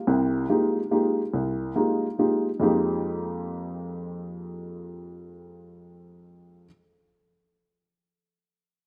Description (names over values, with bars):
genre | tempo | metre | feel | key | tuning
jazz | 142 BPM | 3/4 | swing 65% on 8ths | F minor | A4 = 440 Hz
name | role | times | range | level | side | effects
warm upright piano | solo | 0.1-6.7 s | C2 to G4 | -26 LUFS | equal | none
room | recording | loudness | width
moderate lush hall reverb, RT60 2.5 s | rough home demo mix | -26 LUFS | mono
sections
0.0-2.6 A section; 2.6-5.2 B section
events
none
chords
0.0 Fm11